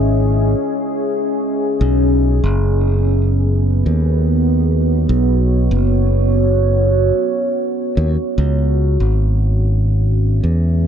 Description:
ambient dub; 73 BPM; 4/4; straight; C# minor; A4 = 441 Hz
deep dark ambient pad; sustained chords; 0.0-10.9 s; B3 to E5; -18 LUFS; right 1 dB; chorus, built-in reverb, vintage 12-bit sampler grit
modern bright fingered electric bass; bass; 0.0-10.9 s; F#1 to E2; -14 LUFS; equal
light reverb; -14 LUFS; side -8 dB against mid
0.0-8.4 A section; 8.4-10.9 B section
0.0 C#madd9; 1.8 B69; 8.4 C#m7

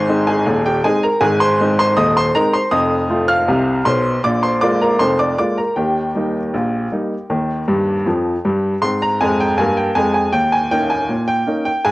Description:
ragtime piano; 79 BPM; 2/4; straight; Ab major; A4 = 440 Hz
clear upright piano; solo; 0.0-11.9 s; Eb1 to F6; -14 LUFS; equal
moderate spring reverb, RT60 1.3 s; home recording on cassette; -14 LUFS; side -19 dB against mid
0.0-8.8 A section; 8.8-11.9 B section
upright piano fill 7.7-8.8
0.0 Ab; 2.7 F7; 4.2 Bb7; 5.8 Eb; 8.8 Ab; 10.3 Eb5

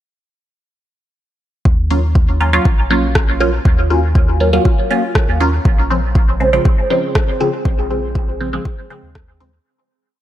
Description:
dub techno; 120 BPM; 4/4; straight; A4 = 440 Hz
pure sine sub bass; bass; 1.7-9.6 s; Bb1 to Eb2; -18 LUFS; equal; sidechain pumping
electronic kick drum; drums; 1.7-9.3 s; -14 LUFS; equal; overdrive
filtered dub chord stab; stabs; 1.9-9.5 s; Db3 to F4; -17 LUFS; right 1 dB; phaser, cassette tape, sidechain pumping, dub echo
electronic rim click; drums; 3.2-9.3 s; -22 LUFS; equal; overdrive, dub echo
deep dark ambient pad; sustained chords; 6.5-9.6 s; C4 to C5; -28 LUFS; right 1 dB; chorus, built-in reverb, sidechain pumping
digital ambience; -12 LUFS; side -12 dB against mid
1.7-9.7 groove
fade-out 7.0-9.7
1.7 Ebm9; 5.7 Bbm9

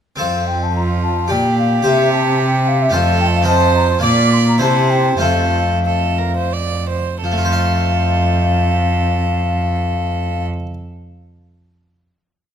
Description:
classical, baroque-style sonata movement with continuo; 84-111 BPM; 3/4; rubato; F major; A4 = 440 Hz
mellow hollow baroque flute; melody; 0.2-10.5 s; E5 to D6; -20 LUFS; left 6 dB
harpsichord; accompaniment; 0.2-10.7 s; F2 to F5; -21 LUFS; left 2 dB
warm cello; bass; 0.2-10.5 s; F2 to C3; -17 LUFS; right 1 dB
warm violin; second line; 0.8-10.4 s; F4 to D5; -21 LUFS; right 8 dB
moderate recital hall reverb, RT60 1.6 s; -14 LUFS; side -8 dB against mid
0.2-7.2 A section; 7.2-11.5 final chord
slowing down 2.7-7.2
0.2 F; 1.3 Gm/Bb; 1.8 C5; 2.9 F; 3.5 F7; 4.0 Bb; 4.6 C; 5.2 F

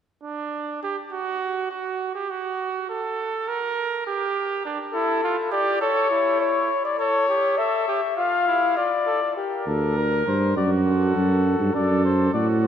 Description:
classical, imitative canzona for brass ensemble; 102 BPM; 4/4; straight; A4 = 444 Hz
warm trumpet; second line; 0.2-12.7 s; D4 to Bb4; -26 LUFS; right 5 dB
mellow cornet; melody; 4.9-12.7 s; G4 to F5; -22 LUFS; left 5 dB
mellow tuba; bass; 9.7-12.7 s; D2 to A2; -20 LUFS; right 1 dB
wet church reverb, RT60 3.6 s; -21 LUFS; side -9 dB against mid
0.0-9.4 A section; 9.4-12.7 B section
0.0 N.C.; 4.7 D5; 5.8 A; 8.2 Dm; 9.4 Gm; 10.6 D/F#

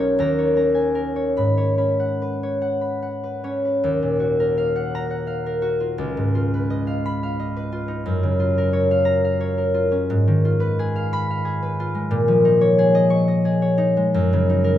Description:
classical, solo harp piece; 47-61 BPM (dotted quarters); 6/8; rubato; G# minor, Eb minor from 3.8 s; A4 = 440 Hz
concert harp; solo; 0.0-14.8 s; B1 to C#6; -18 LUFS; equal
wet stone room reverb, RT60 1.0 s; heard from further back in the room; -18 LUFS; side -11 dB against mid
0.0-3.8 A section; 3.8-14.8 B section
0.2 D#7sus4; 1.4 G#m11; 3.8 Ebmadd9; 6.0 Db9; 8.1 Gbmaj7; 10.1 Abm6; 12.1 A#m7; 14.1 F#69

